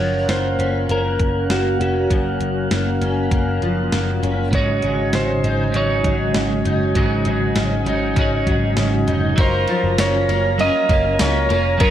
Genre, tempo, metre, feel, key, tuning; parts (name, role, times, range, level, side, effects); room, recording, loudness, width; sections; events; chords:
dream pop; 99 BPM; 4/4; straight; Gb major; A4 = 445 Hz
clean lap steel guitar; melody; 0.0-11.9 s; Gb4 to Eb5; -22 LUFS; right 2 dB; analog delay
mellow tonewheel organ; sustained chords; 0.0-11.9 s; Db4 to Eb6; -24 LUFS; right 1 dB; slow rotary speaker
fingerpicked twelve-string acoustic guitar; arpeggios; 0.0-11.9 s; Gb2 to Eb4; -23 LUFS; left 3 dB; ensemble chorus, analog delay
vintage muted picked electric bass; bass; 0.0-11.9 s; F1 to Db2; -22 LUFS; equal
gated 80s digital drum machine; drums; 0.3-11.9 s; hi-hat, kick drum, ride cymbal, snare drum, tambourine; -22 LUFS; equal; gated reverb, gated reverb snare, analog delay
twelve-string electric guitar; accompaniment; 4.5-11.9 s; Ab2 to Bb4; -23 LUFS; right 2 dB; harmonic tremolo, wide subtle chorus, analog delay
celesta; texture; 9.4-10.5 s; Bb5; -35 LUFS; left 3 dB
moderate echo chamber reverb, RT60 1.4 s, digital ambience; echo-heavy mix; -16 LUFS; side -11 dB against mid
0.0-9.4 A section; 9.4-11.9 B section
0.0 Gbmaj7; 4.5 Ab7sus4; 9.4 Gbmaj7